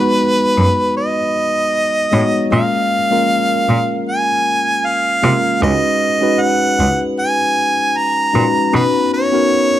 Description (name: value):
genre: lush 1970s-style soul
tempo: 77 BPM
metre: 4/4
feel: swing 54% on 16ths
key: unclear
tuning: A4 = 440 Hz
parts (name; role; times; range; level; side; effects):
- clear harmonica; melody; 0.0-9.8 s; B4 to A#5; -15 LUFS; right 1 dB; none
- tine electric piano; accompaniment; 0.0-9.8 s; G#3 to C#5; -18 LUFS; left 1 dB; phaser
- bright cello; bass; 0.6-8.8 s; C#2 to B#2; -16 LUFS; right 1 dB; none
room: light reverb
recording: none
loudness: -13 LUFS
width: side -12 dB against mid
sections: 0.0-9.8 A section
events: none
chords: 0.0 G#m7; 2.5 A#m7; 5.6 C#9sus4; 8.7 Bmaj9